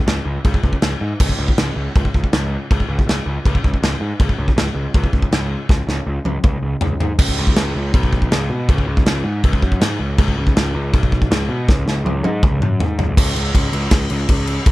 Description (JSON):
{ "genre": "heavy metal", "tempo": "160 BPM", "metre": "4/4", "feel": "straight", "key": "unclear", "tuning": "A4 = 440 Hz", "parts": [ { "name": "fuzz picked electric bass", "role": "bass", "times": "0.1-14.7 s", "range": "B1 to B2", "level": "-20 LUFS", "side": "equal", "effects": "overdrive" }, { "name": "modern studio drum kit", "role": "drums", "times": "0.1-14.7 s", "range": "china cymbal, crash cymbal, kick drum, snare drum, toms", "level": "-16 LUFS", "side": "equal", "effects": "none" } ], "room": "little or no reverb", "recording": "dark, warm production", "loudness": "-15 LUFS", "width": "side -18 dB against mid", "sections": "0.0-7.2 A section; 7.2-13.2 B section; 13.2-14.7 C section", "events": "drum fill 5.7-7.2, 11.7-13.2; half time 13.2-14.7", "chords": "none" }